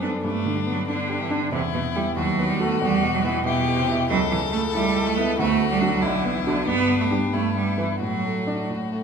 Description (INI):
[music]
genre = quick classical-period movement for piano trio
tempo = 93 BPM (dotted quarters)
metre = 6/8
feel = straight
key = D major from 4.1 s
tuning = A4 = 445 Hz
[part]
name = clear violin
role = melody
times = 0.0-9.0 s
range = D4 to A4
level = -28 LUFS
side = left 8 dB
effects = none
[part]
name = clear cello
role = second line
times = 0.0-8.7 s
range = B2 to B3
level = -24 LUFS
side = right 5 dB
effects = none
[part]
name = warm grand piano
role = accompaniment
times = 0.0-9.0 s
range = B1 to D5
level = -25 LUFS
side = equal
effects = none
[sound]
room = wet recital hall reverb, RT60 1.6 s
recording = minimal, uncompressed stereo recording, faint mains hum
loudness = -20 LUFS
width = side -6 dB against mid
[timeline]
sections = 0.0-9.0 A section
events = none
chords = 0.2 G; 1.5 Em; 2.2 B7/D#; 2.8 Em; 4.1 A/C#; 5.4 D; 6.0 Bm; 6.7 G; 7.3 Em/G; 8.0 D/A